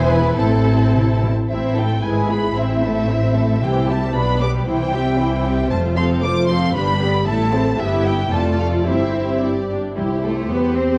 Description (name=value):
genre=quick classical-period movement for string orchestra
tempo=114 BPM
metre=2/4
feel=rubato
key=A minor, C major from 5.7 s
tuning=A4 = 440 Hz
part: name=dark studio violin section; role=melody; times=0.0-11.0 s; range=G4 to D6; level=-28 LUFS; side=equal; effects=none
part: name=clear studio violin section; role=second line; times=0.0-11.0 s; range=C4 to F5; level=-26 LUFS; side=equal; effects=none
part: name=rich studio viola section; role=accompaniment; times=0.0-11.0 s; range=E3 to A4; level=-24 LUFS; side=equal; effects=none
part: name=clear studio cello section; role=bass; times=0.0-11.0 s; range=E2 to C4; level=-25 LUFS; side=equal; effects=none
part: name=rich studio double bass section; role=bass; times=0.0-11.0 s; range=E1 to E2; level=-24 LUFS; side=equal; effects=none
room=wet recital hall reverb, RT60 1.4 s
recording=worn, warbling old tape, cassette tape, vinyl crackle, warbly pitch drift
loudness=-18 LUFS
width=mono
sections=0.0-1.5 A section; 1.5-10.0 B section; 10.0-11.0 A section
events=none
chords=0.4 Am; 2.0 E/G#; 2.6 Am; 3.6 C; 4.2 G/B; 4.7 C; 5.7 F; 6.7 G; 7.3 Am; 7.8 Em/G; 8.3 Dm/F; 8.9 C/G; 9.4 G5; 10.0 C